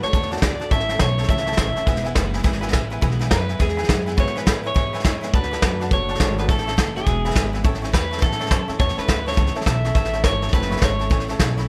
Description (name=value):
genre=rockabilly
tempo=208 BPM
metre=4/4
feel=swing 63% on 8ths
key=A major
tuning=A4 = 438 Hz
part: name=electric guitar through a small old amp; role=melody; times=0.0-11.3 s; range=G#4 to E5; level=-28 LUFS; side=equal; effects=plate reverb, tape echo
part: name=picked steel-string acoustic guitar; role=accompaniment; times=0.0-11.7 s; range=E2 to F#4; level=-32 LUFS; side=equal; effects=none
part: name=tack piano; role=accompaniment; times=0.0-11.6 s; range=B4 to B5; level=-34 LUFS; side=equal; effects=plate reverb
part: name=upright bass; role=bass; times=0.0-11.7 s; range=E1 to A2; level=-28 LUFS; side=equal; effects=none
part: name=soft brush drum kit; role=drums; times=0.0-11.6 s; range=hi-hat, kick drum, snare drum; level=-23 LUFS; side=equal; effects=none
room=light reverb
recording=none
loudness=-21 LUFS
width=mono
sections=0.0-7.7 A section; 7.7-11.7 A section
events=none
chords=0.0 D; 0.7 A; 1.9 E; 5.3 D; 6.5 A; 7.1 E; 7.7 A